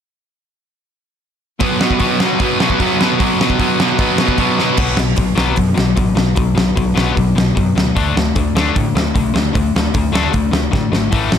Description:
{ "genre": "punk rock", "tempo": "151 BPM", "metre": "4/4", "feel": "straight", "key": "unclear", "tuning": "A4 = 440 Hz", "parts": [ { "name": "distorted electric guitar", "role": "riff", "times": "1.6-11.4 s", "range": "A2 to D4", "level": "-17 LUFS", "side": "left 6 dB", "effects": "distortion" }, { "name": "sludgy distorted guitar", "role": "riff", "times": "1.6-4.8 s", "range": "B2 to B3", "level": "-17 LUFS", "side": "right 17 dB", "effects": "overdrive" }, { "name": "big rock drum kit", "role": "drums", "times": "1.6-11.4 s", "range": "crash cymbal, hi-hat, kick drum, snare drum", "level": "-17 LUFS", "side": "equal", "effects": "none" }, { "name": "overdriven picked electric bass", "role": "bass", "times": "4.8-11.4 s", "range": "G#1 to A2", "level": "-20 LUFS", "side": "right 1 dB", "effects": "none" } ], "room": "light reverb", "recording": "none", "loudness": "-13 LUFS", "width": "side -8 dB against mid", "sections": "1.6-4.8 A section; 4.8-11.4 B section", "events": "drum fill 4.6, 10.7-11.1", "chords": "1.6 B5; 8.0 D5" }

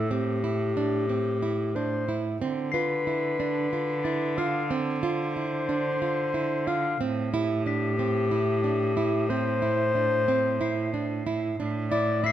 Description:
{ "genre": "contemporary instrumental, chamber music in an uneven meter", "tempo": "183 BPM (eighths)", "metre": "7/8", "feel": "straight", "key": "A minor", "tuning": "A4 = 440 Hz", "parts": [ { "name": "mellow clarinet", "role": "melody", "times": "0.0-12.3 s", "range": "G4 to F5", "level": "-28 LUFS", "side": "left 3 dB", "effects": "none" }, { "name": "nylon-string guitar", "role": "arpeggios", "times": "0.0-12.3 s", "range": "C4 to F4", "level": "-30 LUFS", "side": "right 5 dB", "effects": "none" }, { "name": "bright cello", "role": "bass", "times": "0.0-12.3 s", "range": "A2 to D3", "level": "-30 LUFS", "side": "right 2 dB", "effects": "none" }, { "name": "glockenspiel with rubber mallets", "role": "texture", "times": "2.7-12.3 s", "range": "A6 to C7", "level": "-36 LUFS", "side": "left 6 dB", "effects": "none" } ], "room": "light reverb", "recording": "close, detailed microphones", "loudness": "-24 LUFS", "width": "side -11 dB against mid", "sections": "0.0-11.6 A section", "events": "none", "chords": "0.0 Am7; 2.4 Dm7; 7.0 Am7; 11.6 Am" }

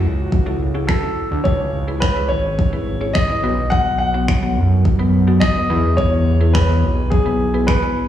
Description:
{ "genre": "dance-pop", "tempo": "106 BPM", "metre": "4/4", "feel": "straight", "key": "unclear", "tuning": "A4 = 440 Hz", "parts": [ { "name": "clear baby grand piano", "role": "melody", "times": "0.0-8.1 s", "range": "F#4 to F#5", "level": "-22 LUFS", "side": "left 1 dB", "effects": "analog delay, slapback echo" }, { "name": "mallet-like synth pluck", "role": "accompaniment", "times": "0.0-8.1 s", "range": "B3 to C#5", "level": "-25 LUFS", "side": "left 1 dB", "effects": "chorus, sidechain pumping, slapback echo" }, { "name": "fat analog bass", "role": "bass", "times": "0.0-7.8 s", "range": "G#1 to F#2", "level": "-18 LUFS", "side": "equal", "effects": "sidechain pumping" }, { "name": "deep house drum kit", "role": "drums", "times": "0.3-7.8 s", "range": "finger snaps, kick drum", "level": "-18 LUFS", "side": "equal", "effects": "none" } ], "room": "light reverb", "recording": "live gig heard through the venue's PA, recital hall reverb", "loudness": "-15 LUFS", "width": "side -11 dB against mid", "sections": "0.0-8.1 A section", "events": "none", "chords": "0.0 F#m7; 1.5 C#m7; 3.4 B; 5.7 E" }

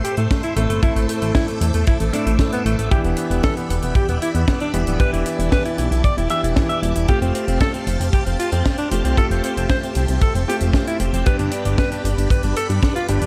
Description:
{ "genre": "italo disco", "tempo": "115 BPM", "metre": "4/4", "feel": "straight", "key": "A minor", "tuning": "A4 = 440 Hz", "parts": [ { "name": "clear alto saxophone", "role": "melody", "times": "0.0-13.3 s", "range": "A3 to E5", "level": "-26 LUFS", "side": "equal", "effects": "digital delay" }, { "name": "phased string machine", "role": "sustained chords", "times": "0.0-13.3 s", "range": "G4 to D6", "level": "-33 LUFS", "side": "equal", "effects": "ensemble chorus, phaser" }, { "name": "warm grand piano", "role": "stabs", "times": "0.0-13.3 s", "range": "G2 to A4", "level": "-28 LUFS", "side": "equal", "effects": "none" }, { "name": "tight funk drum kit", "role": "drums", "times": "0.0-13.3 s", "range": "hi-hat, snare drum", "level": "-30 LUFS", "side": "equal", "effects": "none" }, { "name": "chorused synth bass", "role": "bass", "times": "0.2-13.3 s", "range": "D1 to A2", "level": "-22 LUFS", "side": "equal", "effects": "none" }, { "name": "kick drum", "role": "drums", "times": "0.3-12.9 s", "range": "none", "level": "-22 LUFS", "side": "equal", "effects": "none" } ], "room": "light reverb, small room ambience", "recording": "dark, warm production", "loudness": "-19 LUFS", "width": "mono", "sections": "0.0-13.3 A section", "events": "none", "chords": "0.0 Am; 2.9 Em7; 7.1 Fadd9; 11.3 G" }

